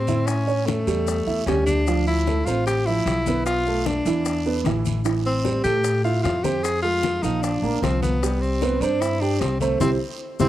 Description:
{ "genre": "Afro-Cuban jazz", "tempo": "151 BPM", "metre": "4/4", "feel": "straight", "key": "unclear", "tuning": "A4 = 442 Hz", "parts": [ { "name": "warm tenor saxophone", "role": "melody", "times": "0.0-10.5 s", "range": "A3 to Ab4", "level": "-24 LUFS", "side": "left 1 dB", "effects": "none" }, { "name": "upright bass", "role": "bass", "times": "0.0-10.5 s", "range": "A1 to A2", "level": "-25 LUFS", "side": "left 1 dB", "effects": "none" }, { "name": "dark upright piano", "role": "accompaniment", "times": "0.1-10.5 s", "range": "E3 to G5", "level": "-25 LUFS", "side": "right 5 dB", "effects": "cassette tape" }, { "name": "congas", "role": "percussion", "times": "0.1-10.5 s", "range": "none", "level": "-31 LUFS", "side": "left 7 dB", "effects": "none" }, { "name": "guiro", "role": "percussion", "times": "0.1-10.5 s", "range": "none", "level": "-39 LUFS", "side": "right 7 dB", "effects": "none" }, { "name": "maracas", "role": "percussion", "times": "0.1-10.5 s", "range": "none", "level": "-39 LUFS", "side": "left 8 dB", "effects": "none" }, { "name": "bongos", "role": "percussion", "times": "0.3-10.5 s", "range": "none", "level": "-32 LUFS", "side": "left 8 dB", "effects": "none" } ], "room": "light reverb, small room ambience", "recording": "home recording on cassette", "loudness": "-20 LUFS", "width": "side -13 dB against mid", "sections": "0.0-10.5 A section", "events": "drum fill 9.8-10.5; band accent 9.8-10.5", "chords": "0.3 A7; 1.9 Dm9; 3.5 Bm7b5; 4.3 E5; 5.1 Am7; 6.6 Fm; 7.4 Bbadd9; 8.2 Cmaj7(no3)" }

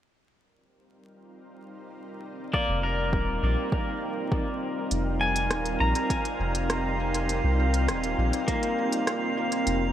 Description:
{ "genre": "ambient dub", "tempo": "101 BPM", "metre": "4/4", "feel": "straight", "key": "unclear", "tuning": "A4 = 440 Hz", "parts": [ { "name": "soft additive organ-like pad", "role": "sustained chords", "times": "1.3-9.9 s", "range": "G3 to Bb4", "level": "-30 LUFS", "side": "equal", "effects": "ensemble chorus, built-in reverb" }, { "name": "pedal steel guitar", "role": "arpeggios", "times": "2.5-9.9 s", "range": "Bb3 to Bb5", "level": "-30 LUFS", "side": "left 1 dB", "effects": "low-pass filter, dub echo" }, { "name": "electronic kick drum", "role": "drums", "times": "2.5-8.6 s", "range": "none", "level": "-29 LUFS", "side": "equal", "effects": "overdrive, studio ambience" }, { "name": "soft dub sub bass", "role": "bass", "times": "2.7-9.9 s", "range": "Eb1 to C2", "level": "-27 LUFS", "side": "equal", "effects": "none" }, { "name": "organic electronic drum kit", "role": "drums", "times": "4.9-9.8 s", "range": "hi-hat, rim click", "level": "-33 LUFS", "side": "equal", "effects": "low-pass filter on hats, studio ambience, low-pass filter on snare, dub echo" }, { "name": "drifting glass-harmonics texture", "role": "texture", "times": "5.2-9.9 s", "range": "F5", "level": "-34 LUFS", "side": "right 3 dB", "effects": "chorus, built-in reverb" } ], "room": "moderate huge ambient reverb, RT60 6.8 s", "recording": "vinyl crackle", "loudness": "-24 LUFS", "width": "side -11 dB against mid", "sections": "0.2-4.9 A section; 4.9-9.9 B section", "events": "fade-in on ambient pad 0.2-4.9", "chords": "0.2 F5; 4.9 Fm7" }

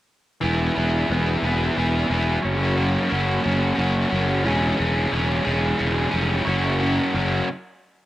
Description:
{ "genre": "rock", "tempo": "60 BPM (dotted quarters)", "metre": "6/8", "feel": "straight", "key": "E lydian", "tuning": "A4 = 439 Hz", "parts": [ { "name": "overdriven electric guitar", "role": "riff", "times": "0.4-7.5 s", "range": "E3 to G#4", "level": "-21 LUFS", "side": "equal", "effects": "cassette tape" }, { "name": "fuzz fingered electric bass", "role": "bass", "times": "0.4-7.4 s", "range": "E1 to F#1", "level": "-23 LUFS", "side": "equal", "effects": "overdrive" } ], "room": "light reverb, digital ambience", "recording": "home recording on cassette", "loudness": "-19 LUFS", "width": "side -15 dB against mid", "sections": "0.4-8.1 A section", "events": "stop 7.5-8.1", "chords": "0.4 E; 2.4 F#; 4.5 C#m/E; 6.5 F#" }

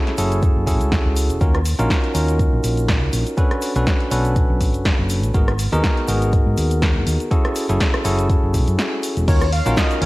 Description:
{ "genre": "deep house", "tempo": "122 BPM", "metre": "4/4", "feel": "swing 55% on 16ths", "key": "Eb minor", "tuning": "A4 = 438 Hz", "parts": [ { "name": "bell-like tine electric piano", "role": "stabs", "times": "0.0-10.1 s", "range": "Cb4 to B4", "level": "-22 LUFS", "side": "equal", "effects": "vintage 12-bit sampler grit, sidechain pumping, tape echo" }, { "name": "deep house drum kit", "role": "drums", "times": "0.1-10.1 s", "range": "crash cymbal, hi-hat, rim click, snare drum", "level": "-25 LUFS", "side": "equal", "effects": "cassette tape" }, { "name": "hollow-body short-scale fingered electric bass", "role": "bass", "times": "0.2-10.1 s", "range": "Fb1 to Ab2", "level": "-20 LUFS", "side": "equal", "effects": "none" }, { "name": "egg shaker", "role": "percussion", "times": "0.2-10.0 s", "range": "none", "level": "-38 LUFS", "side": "right 1 dB", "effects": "none" }, { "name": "electronic kick drum", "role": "drums", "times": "0.4-9.9 s", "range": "none", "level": "-18 LUFS", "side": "equal", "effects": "cassette tape" }, { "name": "warm velvety synth lead", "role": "melody", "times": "9.3-10.1 s", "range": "Db5 to F5", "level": "-24 LUFS", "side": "left 1 dB", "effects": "chorus, cassette tape" } ], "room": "light reverb", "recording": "home recording on cassette", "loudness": "-16 LUFS", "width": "side -20 dB against mid", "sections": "0.0-9.3 A section", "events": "break 8.8-9.3", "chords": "0.0 Gbm9; 1.4 Ebm9; 3.4 Bm9; 5.3 Abm9; 7.3 Gbm9; 9.3 Ebm9" }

